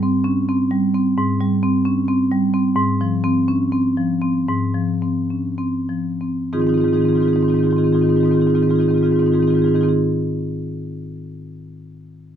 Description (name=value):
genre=classical, contemporary piece for solo marimba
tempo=185-265 BPM (eighths)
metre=7/8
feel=straight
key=Ab major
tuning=A4 = 440 Hz
part: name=marimba with medium hard mallets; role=solo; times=0.0-9.9 s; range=Ab2 to Ab4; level=-16 LUFS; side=equal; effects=none
room=light reverb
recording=close, detailed microphones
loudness=-16 LUFS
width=side -9 dB against mid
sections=0.0-6.5 A section; 6.5-11.0 B section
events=slowing down 2.0-6.5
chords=0.0 Abmaj7; 2.8 Ab6